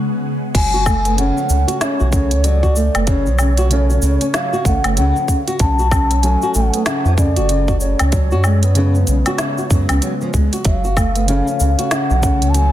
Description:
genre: organic downtempo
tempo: 95 BPM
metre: 4/4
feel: swing 60% on 16ths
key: F# harmonic minor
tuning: A4 = 444 Hz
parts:
  - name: ethereal airy pad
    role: sustained chords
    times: 0.0-0.6, 11.7-12.7 s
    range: C#3 to F#5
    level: -26 LUFS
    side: left 2 dB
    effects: ensemble chorus, built-in reverb, phaser, sidechain pumping
  - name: round analog bass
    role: bass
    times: 0.5-12.7 s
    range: F#1 to F#2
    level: -16 LUFS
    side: equal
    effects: tube saturation, sidechain pumping
  - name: electronic kick drum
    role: drums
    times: 0.5-12.4 s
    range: none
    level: -18 LUFS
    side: equal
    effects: none
  - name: organic electronic drum kit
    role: drums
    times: 0.5-12.7 s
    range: cabasa, crash cymbal, hi-hat, snare drum, woodblock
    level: -22 LUFS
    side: equal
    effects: none
  - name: mellow hollow bansuri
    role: melody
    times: 0.6-12.7 s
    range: C#5 to A5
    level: -22 LUFS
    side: equal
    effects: ping-pong delay
  - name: flamenco guitar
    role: arpeggios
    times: 0.6-12.7 s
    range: C#3 to F#4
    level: -21 LUFS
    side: equal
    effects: digital delay
  - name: felt-muted upright piano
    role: accompaniment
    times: 1.2-12.7 s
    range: C#3 to C#4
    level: -25 LUFS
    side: left 2 dB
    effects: sidechain pumping, digital delay
room: light reverb, digital ambience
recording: dense, heavily limited modern master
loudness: -13 LUFS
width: side -12 dB against mid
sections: 0.6-12.7 A section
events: break 0.0-0.6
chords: 0.0 C#7sus4; 0.6 F#m; 8.1 C#7sus4; 10.7 F#m

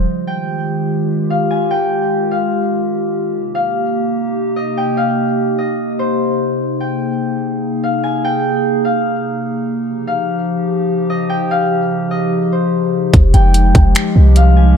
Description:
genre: hip hop, atmospheric cloud-rap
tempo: 147 BPM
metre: 4/4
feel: half-time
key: F minor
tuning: A4 = 441 Hz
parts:
  - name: concert harp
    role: melody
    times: 0.0-14.8 s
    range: C5 to Ab5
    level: -20 LUFS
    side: left 3 dB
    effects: digital delay
  - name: warbly tape-like pad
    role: sustained chords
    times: 0.0-14.8 s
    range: C3 to Ab4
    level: -17 LUFS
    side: equal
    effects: chorus, built-in reverb, sidechain pumping
  - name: clean 808-style bass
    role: bass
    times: 0.0-0.1, 13.1-14.7 s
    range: F1 to C2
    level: -9 LUFS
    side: equal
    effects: none
  - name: trap drum kit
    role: drums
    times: 13.1-14.5 s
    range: finger snaps, hi-hat, kick drum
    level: -12 LUFS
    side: equal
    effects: none
room: light reverb, digital ambience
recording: dark, warm production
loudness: -13 LUFS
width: side -7 dB against mid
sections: 0.1-13.1 A section; 13.1-14.8 B section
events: none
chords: 0.1 Fm9; 3.3 Cm7; 6.6 Bb9sus4; 9.9 Eb9; 13.1 Fm9

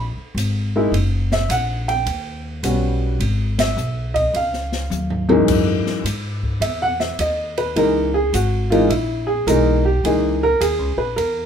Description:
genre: jazz piano trio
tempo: 105 BPM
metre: 4/4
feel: swing 67% on 8ths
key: F# mixolydian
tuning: A4 = 436 Hz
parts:
  - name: warm upright piano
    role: melody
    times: 0.0-11.5 s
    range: F#2 to G5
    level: -18 LUFS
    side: equal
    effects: none
  - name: upright bass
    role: bass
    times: 0.0-11.5 s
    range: F#1 to G#2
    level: -22 LUFS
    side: equal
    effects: none
  - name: open jazz drum kit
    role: drums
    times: 0.4-11.4 s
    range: crash cymbal, hi-hat, kick drum, ride cymbal, snare drum, toms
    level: -28 LUFS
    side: left 1 dB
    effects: none
room: moderate studio reverb, RT60 0.8 s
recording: minimal, uncompressed stereo recording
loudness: -17 LUFS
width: side -8 dB against mid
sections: 0.0-5.5 A section; 5.5-11.5 A section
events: band accent 3.5; drum fill 4.9-5.5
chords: 0.0 C#5 (rootless); 0.9 F#; 2.1 D#7alt; 3.2 G#m; 4.3 C#add9; 5.5 F#13 (rootless)

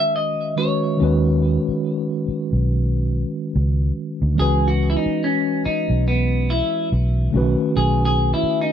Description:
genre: R&B, neo-soul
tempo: 71 BPM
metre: 4/4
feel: swing 58% on 16ths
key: C# minor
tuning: A4 = 440 Hz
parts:
  - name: semi-hollow electric guitar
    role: melody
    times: 0.0-8.7 s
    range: B3 to E5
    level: -22 LUFS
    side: left 1 dB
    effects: lush chorus
  - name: mellow tine electric piano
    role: accompaniment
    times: 0.0-8.7 s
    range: C#3 to B4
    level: -22 LUFS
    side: equal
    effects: medium stereo tremolo
  - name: vintage muted fingered electric bass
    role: bass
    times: 1.0-8.5 s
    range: B1 to D#2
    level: -19 LUFS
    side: equal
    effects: none
room: little or no reverb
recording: dry, close 1970s-style studio recording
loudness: -18 LUFS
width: side -9 dB against mid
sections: 0.0-4.4 A section; 4.4-8.7 B section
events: clean electric guitar solo 4.4-8.7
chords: 0.0 C#sus2; 1.0 B69; 4.4 C#m7; 7.3 B13

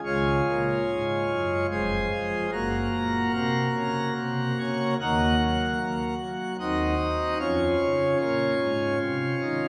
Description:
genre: classical, chorale-style piece for pipe organ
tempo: 74 BPM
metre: 3/4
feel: rubato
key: Db major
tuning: A4 = 440 Hz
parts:
  - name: pipe organ, plenum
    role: solo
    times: 0.1-9.7 s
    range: F1 to Gb5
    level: -26 LUFS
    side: equal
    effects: none
room: wet church reverb, RT60 3.5 s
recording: recorded in a church or concert hall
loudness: -26 LUFS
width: mono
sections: 0.1-9.7 A section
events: none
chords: 0.1 Db; 1.7 Fm; 2.5 Gb; 5.0 Ebm; 6.6 Ebm6; 7.4 Db/F

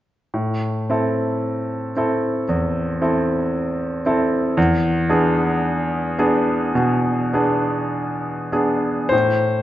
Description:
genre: classical, romantic nocturne for solo piano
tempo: 48-58 BPM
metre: 4/4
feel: rubato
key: A minor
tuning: A4 = 439 Hz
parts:
  - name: bright concert grand piano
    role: solo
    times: 0.3-9.6 s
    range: E2 to C5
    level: -18 LUFS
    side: equal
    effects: none
room: wet recital hall reverb, RT60 1.4 s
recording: nothing above 7.5 kHz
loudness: -18 LUFS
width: side -13 dB against mid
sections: 0.3-9.1 A section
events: none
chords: 0.3 Am; 4.6 E7

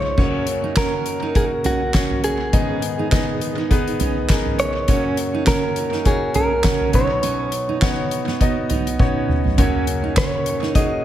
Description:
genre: piano-driven pop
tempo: 102 BPM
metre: 4/4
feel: swing 56% on 16ths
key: F# major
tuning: A4 = 441 Hz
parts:
  - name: direct-recorded clean electric guitar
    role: melody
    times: 0.0-11.0 s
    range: F#4 to D#5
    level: -24 LUFS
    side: right 1 dB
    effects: spring reverb, tape echo
  - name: clear concert grand piano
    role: accompaniment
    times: 0.0-11.0 s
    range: F#2 to D#5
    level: -23 LUFS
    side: left 2 dB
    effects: none
  - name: fingerpicked steel-string acoustic guitar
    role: riff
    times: 0.2-10.9 s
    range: B3 to D#4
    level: -27 LUFS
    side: right 8 dB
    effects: tape echo
  - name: soft-mallet drum kit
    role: drums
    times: 0.2-10.9 s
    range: crash cymbal, handclaps, hi-hat, kick drum, snare drum, toms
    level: -20 LUFS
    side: equal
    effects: none
room: small room ambience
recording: echo-heavy mix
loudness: -17 LUFS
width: side -12 dB against mid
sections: 0.2-11.0 A section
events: drum fill 9.0-9.6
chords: 0.2 F#; 2.5 G#m; 4.9 F#; 6.9 Badd9; 9.6 F#

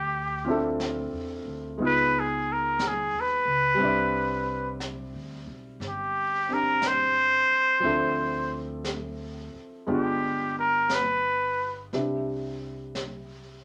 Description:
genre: jazz ballad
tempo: 59 BPM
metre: 4/4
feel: swing 67% on 8ths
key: C major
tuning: A4 = 442 Hz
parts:
  - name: trumpet with straight mute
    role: melody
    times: 0.0-11.8 s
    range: G4 to C5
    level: -26 LUFS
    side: equal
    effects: none
  - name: upright bass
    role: bass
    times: 0.0-13.6 s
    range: G1 to E2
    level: -41 LUFS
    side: equal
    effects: none
  - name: warm grand piano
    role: accompaniment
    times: 0.4-13.6 s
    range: C3 to D5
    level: -33 LUFS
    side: equal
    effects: none
  - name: jazz brush drum kit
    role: drums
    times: 0.8-13.6 s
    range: brushed snare drum, hi-hat, snare drum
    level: -41 LUFS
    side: equal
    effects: none
room: moderate studio reverb, RT60 0.5 s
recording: none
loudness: -26 LUFS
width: mono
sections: 0.0-11.9 A section; 11.9-13.6 B section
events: muted trumpet solo 0.0-11.9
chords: 0.0 Dm9; 1.8 Db9; 3.8 Cmaj9; 7.8 Dm7; 9.9 G7b9; 11.9 Cmaj9

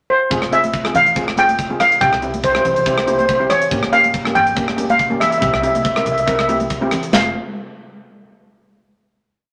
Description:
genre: calypso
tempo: 141 BPM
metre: 4/4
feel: swing 53% on 16ths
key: F harmonic minor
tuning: A4 = 441 Hz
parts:
  - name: steel pan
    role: melody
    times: 0.1-7.3 s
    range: C5 to G5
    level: -17 LUFS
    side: equal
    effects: none
  - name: steel pan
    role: accompaniment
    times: 0.3-7.3 s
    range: Bb3 to Bb4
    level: -25 LUFS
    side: equal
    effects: none
  - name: upright bass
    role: bass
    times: 0.3-7.3 s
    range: F1 to C2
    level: -32 LUFS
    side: equal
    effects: none
  - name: tight metal drum kit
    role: drums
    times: 0.3-7.2 s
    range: crash cymbal, hi-hat, kick drum, rim click, snare drum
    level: -24 LUFS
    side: equal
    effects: none
  - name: congas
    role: percussion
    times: 0.6-7.3 s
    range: none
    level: -30 LUFS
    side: equal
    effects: none
room: wet club reverb, RT60 0.6 s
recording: none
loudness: -16 LUFS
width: mono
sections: 0.0-0.3 pickup bar; 0.3-7.1 verse; 7.1-8.8 final chord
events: none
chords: 0.3 Fm; 2.0 C; 3.7 Gdim; 5.4 C; 7.1 Fm

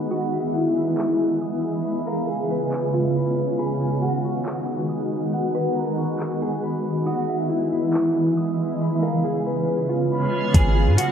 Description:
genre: hip hop, atmospheric cloud-rap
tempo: 138 BPM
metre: 4/4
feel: half-time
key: G# minor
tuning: A4 = 440 Hz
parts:
  - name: shimmering ambient pad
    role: sustained chords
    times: 0.0-11.1 s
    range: C#3 to F#4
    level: -23 LUFS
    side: right 1 dB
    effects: chorus, built-in reverb, sidechain pumping
  - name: concert harp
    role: arpeggios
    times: 0.0-11.1 s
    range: E4 to D#6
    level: -30 LUFS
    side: left 1 dB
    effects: digital delay
  - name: backwards swelling texture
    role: texture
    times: 0.0-11.1 s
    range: G#3 to F#5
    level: -35 LUFS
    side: equal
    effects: built-in reverb
  - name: electric guitar through a small old amp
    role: melody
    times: 0.1-11.1 s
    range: E4 to B4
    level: -26 LUFS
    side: equal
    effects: ensemble chorus, digital delay
  - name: smooth R&B drum kit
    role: drums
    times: 1.0-11.1 s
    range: handclaps, hi-hat, kick drum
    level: -21 LUFS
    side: equal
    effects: none
  - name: warm 808-style bass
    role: bass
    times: 10.5-11.0 s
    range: G#1 to G#2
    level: -17 LUFS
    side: equal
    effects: none
room: wet lush hall reverb, RT60 1.7 s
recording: bright 1980s-style digital production, low-pass filter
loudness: -20 LUFS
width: side -8 dB against mid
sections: 0.0-10.5 A section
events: filter sweep 0.0-10.5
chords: 0.1 Emaj7; 1.8 C#7; 3.6 G#m7; 7.1 Emaj7; 8.8 C#7; 10.5 G#m7

